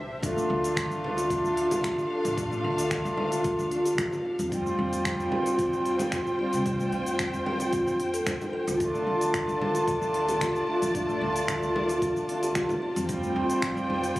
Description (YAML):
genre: organic downtempo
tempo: 112 BPM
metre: 4/4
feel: straight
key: D minor pentatonic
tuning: A4 = 444 Hz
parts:
  - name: dark chamber string section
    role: sustained chords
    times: 0.0-14.2 s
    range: D4 to A5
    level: -34 LUFS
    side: left 1 dB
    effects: sidechain pumping
  - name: upright bass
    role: bass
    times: 0.0-14.1 s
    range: A1 to F2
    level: -35 LUFS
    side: equal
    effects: sidechain pumping
  - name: hand-pumped harmonium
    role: accompaniment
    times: 0.2-14.2 s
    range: G3 to F4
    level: -29 LUFS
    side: equal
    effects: vintage 12-bit sampler grit, sidechain pumping, tape echo
  - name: kalimba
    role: arpeggios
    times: 0.2-14.2 s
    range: A3 to A4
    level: -30 LUFS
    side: equal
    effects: tape echo
  - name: electronic kick drum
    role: drums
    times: 0.2-14.2 s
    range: none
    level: -35 LUFS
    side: equal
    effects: studio reverb
  - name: organic electronic drum kit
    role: drums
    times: 0.2-14.2 s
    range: cabasa, finger snaps, hi-hat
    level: -34 LUFS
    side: equal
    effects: studio reverb
  - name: frame drum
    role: percussion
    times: 1.0-14.0 s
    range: none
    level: -36 LUFS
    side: equal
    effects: none
room: light reverb, studio reverb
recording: recorded on a phone in the room, club reverb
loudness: -25 LUFS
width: side -17 dB against mid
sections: 0.2-14.2 A section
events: none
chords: 0.2 Dm; 4.5 Fsus2; 8.8 Dm; 13.1 Fsus2